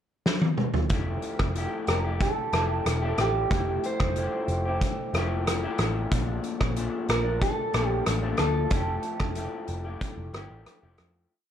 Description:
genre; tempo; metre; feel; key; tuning
indie pop, bedroom pop; 92 BPM; 4/4; straight; F major; A4 = 440 Hz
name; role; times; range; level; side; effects
loose indie drum kit; drums; 0.3-11.1 s; hi-hat, kick drum, rim click, snare drum, toms; -28 LUFS; equal; none
electric guitar through a small old amp; accompaniment; 0.9-11.3 s; Bb2 to G4; -32 LUFS; left 3 dB; lush chorus, warbly pitch drift
vintage muted picked electric bass; bass; 0.9-11.3 s; E1 to F2; -30 LUFS; equal; none
electric guitar through a small old amp; melody; 1.9-10.6 s; G4 to C5; -30 LUFS; right 2 dB; wide subtle chorus, tape echo
room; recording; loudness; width
light reverb, small room reverb; dark, warm production; -24 LUFS; side -9 dB against mid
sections
0.0-0.9 pickup bar; 0.9-11.3 A section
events
drum fill 0.3-0.9; fade-out 8.7-11.3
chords
0.0 N.C.; 0.9 Fmaj9; 6.1 Bbmaj7; 8.7 Fmaj9

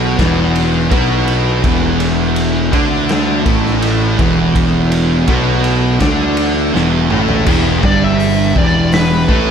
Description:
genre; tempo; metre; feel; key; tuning
stoner and doom metal; 82 BPM; 4/4; straight; E minor; A4 = 440 Hz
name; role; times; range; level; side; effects
tonewheel organ; sustained chords; 0.0-9.5 s; E3 to G4; -27 LUFS; equal; none
fuzz guitar; riff; 0.0-9.5 s; E2 to D4; -20 LUFS; equal; distortion
thick fuzz guitar; riff; 0.0-9.5 s; E2 to D4; -18 LUFS; left 10 dB; distortion
thick fuzz guitar; riff; 0.0-9.5 s; E2 to D4; -17 LUFS; right 10 dB; distortion
fuzz picked electric bass; bass; 0.0-9.5 s; E1 to D2; -18 LUFS; equal; overdrive
raw garage drum kit; drums; 0.2-9.5 s; crash cymbal, hi-hat, kick drum, ride cymbal, snare drum, toms; -18 LUFS; equal; none
fuzz lead guitar; melody; 7.9-9.5 s; B4 to E5; -18 LUFS; equal; wah, distortion
room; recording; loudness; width
studio reverb; none; -11 LUFS; side -7 dB against mid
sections
0.0-7.5 A section; 7.5-9.5 B section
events
drum fill 6.7-7.5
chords
0.0 E5; 7.5 Em

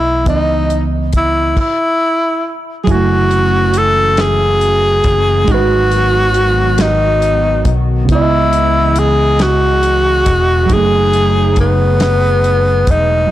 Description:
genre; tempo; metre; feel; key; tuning
slow six-eight R&B; 46 BPM (dotted quarters); 6/8; straight; F# dorian; A4 = 440 Hz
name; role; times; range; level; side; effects
breathy tenor saxophone; melody; 0.0-13.3 s; B3 to A4; -13 LUFS; left 1 dB; slapback echo
reed electric piano; accompaniment; 0.0-13.3 s; B2 to G#5; -19 LUFS; right 5 dB; none
fretless electric bass; bass; 0.0-13.3 s; E1 to C#2; -15 LUFS; equal; transformer saturation, lush chorus
warm soul drum kit; drums; 0.3-13.1 s; crash cymbal, hi-hat, kick drum, snare drum; -17 LUFS; equal; none
hollow soft pad; sustained chords; 2.9-13.3 s; C#3 to D#5; -23 LUFS; equal; chorus
room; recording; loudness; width
light reverb; blown-out, overdriven recording, overdrive; -10 LUFS; side -14 dB against mid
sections
0.0-2.9 A section; 2.9-13.3 B section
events
none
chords
0.3 C#m9; 2.9 F#m9; 5.5 G#m7; 8.1 C#m9; 10.7 F#m69

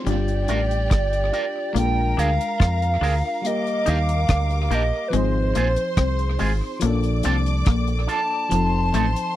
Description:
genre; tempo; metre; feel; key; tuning
lovers rock reggae; 71 BPM; 4/4; straight; G minor; A4 = 440 Hz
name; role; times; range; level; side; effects
warm studio string section; second line; 0.0-9.4 s; G4 to D6; -33 LUFS; right 1 dB; none
FM electric piano; accompaniment; 0.0-9.4 s; F3 to Bb4; -28 LUFS; left 4 dB; chorus
reedy FM lead; melody; 0.1-9.3 s; B4 to A5; -25 LUFS; right 1 dB; chorus, tape echo
twangy electric guitar; riff; 0.1-9.1 s; F3 to F4; -28 LUFS; left 9 dB; wide subtle chorus
deep dub fingered electric bass; bass; 0.1-9.1 s; F1 to F2; -22 LUFS; right 1 dB; none
deep reggae drum kit; drums; 0.1-9.4 s; hi-hat, kick drum, rim click; -24 LUFS; equal; tape echo
electric guitar with an envelope filter; stabs; 0.5-9.1 s; C4 to Bb4; -28 LUFS; right 4 dB; none
room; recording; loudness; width
little or no reverb; dry, close 1970s-style studio recording; -19 LUFS; side -13 dB against mid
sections
0.1-9.4 A section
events
none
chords
0.1 Gm7; 1.8 Bb7; 3.4 Ebmaj7; 5.1 Ab6; 6.8 Bbmaj7; 8.5 F7

